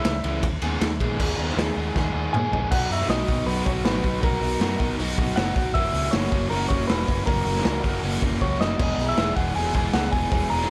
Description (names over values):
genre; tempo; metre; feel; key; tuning
indie rock; 158 BPM; 4/4; straight; unclear; A4 = 443 Hz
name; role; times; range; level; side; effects
electric guitar through a small old amp; melody; 0.0-10.7 s; A#4 to A#5; -30 LUFS; equal; slapback echo
overdriven semi-hollow guitar; riff; 0.0-10.7 s; E2 to G#4; -29 LUFS; equal; none
vintage muted fingered electric bass; bass; 0.0-10.6 s; E1 to A#2; -31 LUFS; equal; none
raw garage drum kit; drums; 0.0-10.7 s; crash cymbal, hi-hat, kick drum, ride cymbal, snare drum, toms; -28 LUFS; equal; none
room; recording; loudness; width
small room ambience; none; -24 LUFS; mono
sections
0.0-1.2 A section; 1.2-2.7 B section; 2.7-10.7 C section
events
clean electric guitar solo 0.0-1.2; drum fill 1.9-2.7, 8.4-8.8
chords
0.4 G#m/D#; 2.7 Bmaj7; 5.7 F#7; 8.8 E